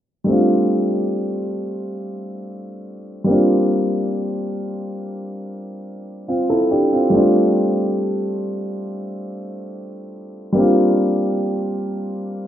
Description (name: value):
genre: R&B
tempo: free time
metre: none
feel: none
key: F major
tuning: A4 = 440 Hz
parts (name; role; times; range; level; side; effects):
- warm concert grand piano; accompaniment; 0.2-12.5 s; G3 to A4; -18 LUFS; equal; none
room: moderate lush hall reverb, RT60 2.5 s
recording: rough home demo mix, low-pass filter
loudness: -17 LUFS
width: side -11 dB against mid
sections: 0.3-12.5 A section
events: filter sweep 0.3-12.5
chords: 0.3 F6; 3.3 C7sus4; 7.1 G7sus4; 10.6 C7sus4